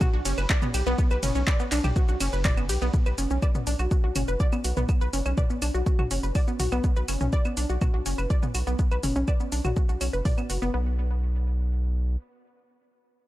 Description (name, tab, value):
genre	melodic techno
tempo	123 BPM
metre	4/4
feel	straight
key	B minor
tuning	A4 = 440 Hz
part	wide unison pluck	arpeggios	0.0-11.0 s	B3 to D5	-30 LUFS	equal	sidechain pumping, tape echo
part	deep house drum kit	drums	0.0-10.7 s	claves, handclaps, hi-hat, ride cymbal, shaker, toms	-31 LUFS	equal	none
part	electronic kick drum	drums	0.0-10.4 s	none	-23 LUFS	equal	none
part	round analog bass	bass	0.1-12.2 s	F#1 to B1	-27 LUFS	equal	sidechain pumping
room	digital ambience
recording	dry, gritty hardware recording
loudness	-23 LUFS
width	side -16 dB against mid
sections	0.0-2.9 A section; 2.9-10.7 B section; 10.7-13.3 C section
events	drop 0.0-2.9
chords	0.0 G (rootless); 2.9 Bm; 10.7 N.C.